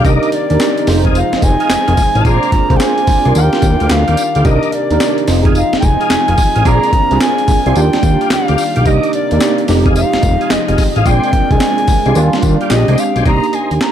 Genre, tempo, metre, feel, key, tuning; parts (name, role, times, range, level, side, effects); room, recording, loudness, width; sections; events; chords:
R&B, new jack swing; 109 BPM; 4/4; swing 65% on 16ths; C minor; A4 = 440 Hz
bright reedy alto ocarina; melody; 0.0-13.9 s; D5 to Bb5; -17 LUFS; left 1 dB
tine electric piano; accompaniment; 0.0-13.9 s; G3 to C5; -17 LUFS; right 5 dB; ensemble chorus
lush unison pad; sustained chords; 0.0-13.3 s; C3 to D5; -23 LUFS; left 2 dB; chorus
tonewheel organ; stabs; 0.0-13.7 s; D4 to Eb5; -23 LUFS; left 2 dB; chorus vibrato, slow rotary speaker
fat analog bass; bass; 0.0-13.8 s; F1 to Eb2; -14 LUFS; equal
breakbeat sampler-style drum kit; drums; 0.0-13.9 s; handclaps, hi-hat, kick drum, snare drum, tambourine; -16 LUFS; equal; overdrive
digital ambience; -10 LUFS; side -10 dB against mid
0.0-13.3 A section
0.0 Cm9; 0.9 Fm7; 2.2 Bb9; 3.4 Ebmaj9; 4.5 Cm9; 5.3 Fm7; 6.7 Bb9; 7.8 Ebmaj9; 8.9 Cm9; 9.7 Fm7; 11.1 Bb9; 12.2 Ebmaj9; 12.7 Bb13; 13.3 Cm7